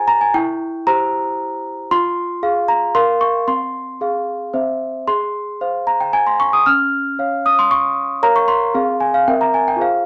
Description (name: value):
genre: classical, lullaby for celesta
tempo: 114 BPM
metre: 3/4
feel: straight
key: F minor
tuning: A4 = 439 Hz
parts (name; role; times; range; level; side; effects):
- celesta; solo; 0.0-10.1 s; C4 to F6; -17 LUFS; equal; none
room: moderate club reverb, RT60 0.7 s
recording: none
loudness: -18 LUFS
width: mono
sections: 0.0-10.1 A section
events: none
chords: 0.3 C7/E; 1.9 Fm; 2.9 Bbm; 3.5 Fm/C; 4.5 C; 5.1 Fm/Ab; 6.7 Db; 8.2 Bbmadd9; 8.7 Fm/C; 9.3 C7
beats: | 0.34 0.87 1.39 | 1.91 2.42 2.94 | 3.47 4.00 4.54 | 5.07 5.61 6.13 | 6.66 7.19 7.71 | 8.22 8.74 9.27 | 9.80